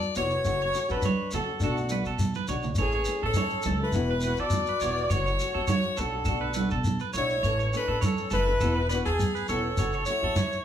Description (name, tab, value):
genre	highlife guitar band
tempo	103 BPM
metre	4/4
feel	swing 54% on 16ths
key	A major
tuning	A4 = 440 Hz
part	warm horn section	melody	0.0-10.6 s	A3 to D5	-29 LUFS	left 1 dB	none
part	shekere	percussion	0.0-10.6 s	none	-31 LUFS	left 1 dB	none
part	nylon-string guitar	accompaniment	0.2-10.4 s	E3 to A4	-35 LUFS	left 5 dB	none
part	clean electric guitar	arpeggios	0.2-10.6 s	A4 to C#5	-34 LUFS	right 7 dB	none
part	upright bass	bass	0.2-10.5 s	E1 to B2	-31 LUFS	equal	none
part	congas	percussion	0.2-10.5 s	none	-33 LUFS	right 4 dB	none
room	moderate large studio reverb, RT60 0.9 s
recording	band playing live in one room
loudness	-24 LUFS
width	side -10 dB against mid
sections	0.0-10.6 A section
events	drum fill 2.3-2.8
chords	0.5 F#m; 1.6 Bm7; 2.8 A; 3.9 Esus2; 5.1 F#m; 6.3 Bm7; 7.4 A; 8.6 Esus2; 9.8 F#m